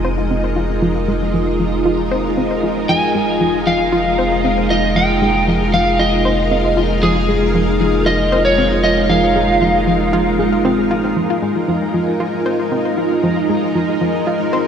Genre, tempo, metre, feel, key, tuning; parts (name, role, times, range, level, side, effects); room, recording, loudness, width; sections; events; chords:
ambient, sequencer-driven space music; 116 BPM; 4/4; straight; F minor; A4 = 439 Hz
string machine, full ensemble; sustained chords; 0.0-14.7 s; Ab3 to F5; -17 LUFS; equal; phaser, ensemble chorus
analog pluck; riff; 0.0-14.6 s; F3 to C5; -20 LUFS; equal; chorus, ping-pong delay
warm sub bass; bass; 0.0-11.1 s; F1; -22 LUFS; equal
wind-like tuned noise texture; texture; 0.0-11.2 s; Ab4; -33 LUFS; right 4 dB
lightly driven lead guitar; melody; 2.9-10.6 s; Ab4 to Ab5; -17 LUFS; equal; lush chorus, ping-pong delay
wet lush hall reverb, RT60 3.1 s; dreamy mix soaked in reverb; -13 LUFS; side -8 dB against mid
0.0-11.2 A section; 11.2-14.7 B section
0.0 Fm7